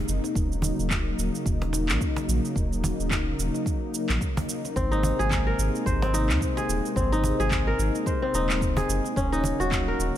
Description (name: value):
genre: organic downtempo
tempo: 109 BPM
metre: 4/4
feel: swing 57% on 16ths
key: Eb dorian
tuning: A4 = 438 Hz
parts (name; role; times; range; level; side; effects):
- warm analog pad; sustained chords; 0.0-10.2 s; C3 to Eb4; -30 LUFS; left 1 dB; chorus, sidechain pumping
- warm sub bass; bass; 0.0-10.1 s; Eb1 to Eb2; -27 LUFS; equal; none
- electronic shaker and handclaps; drums; 0.1-10.2 s; none; -32 LUFS; right 2 dB; none
- cajon; percussion; 0.2-9.6 s; none; -32 LUFS; right 1 dB; none
- electronic kick drum; drums; 0.4-9.8 s; none; -29 LUFS; equal; none
- kora; arpeggios; 4.8-10.2 s; C4 to C5; -27 LUFS; left 1 dB; tape echo
room: light reverb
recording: none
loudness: -23 LUFS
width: side -12 dB against mid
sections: 0.0-10.2 A section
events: none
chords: 0.4 Ebm7; 4.8 Abadd9; 9.2 Ebm7